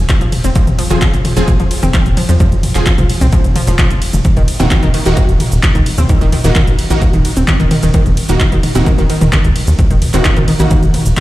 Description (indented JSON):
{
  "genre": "driving peak-time techno",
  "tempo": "130 BPM",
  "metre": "4/4",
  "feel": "straight",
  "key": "unclear",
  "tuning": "A4 = 440 Hz",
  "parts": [
    { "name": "tight sequencer bass", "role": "bass", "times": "0.0-11.1 s", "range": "Eb1 to F2", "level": "-14 LUFS", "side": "equal", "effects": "sidechain pumping" },
    { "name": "electronic kick drum", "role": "drums", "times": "0.1-11.2 s", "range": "none", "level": "-12 LUFS", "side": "equal", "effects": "none" },
    { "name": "punchy analog drum machine", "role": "drums", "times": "0.1-11.2 s", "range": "handclaps, hi-hat, ride cymbal, shaker, toms", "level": "-18 LUFS", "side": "equal", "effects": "overdrive" },
    { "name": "wide unison pluck", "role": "riff", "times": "0.2-10.8 s", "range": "Eb3 to C4", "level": "-18 LUFS", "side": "equal", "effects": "overdrive, sidechain pumping, tape echo" },
    { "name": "rave stab", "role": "stabs", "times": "0.9-10.7 s", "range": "Eb3 to Ab4", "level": "-20 LUFS", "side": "right 1 dB", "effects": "chorus, built-in reverb, sidechain pumping, tape echo" }
  ],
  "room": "light reverb",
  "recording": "played on a big sound system in a bare room, large studio reverb",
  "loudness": "-10 LUFS",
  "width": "side -16 dB against mid",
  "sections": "0.0-11.2 A section",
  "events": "none",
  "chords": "0.0 Fm; 4.2 Ebm"
}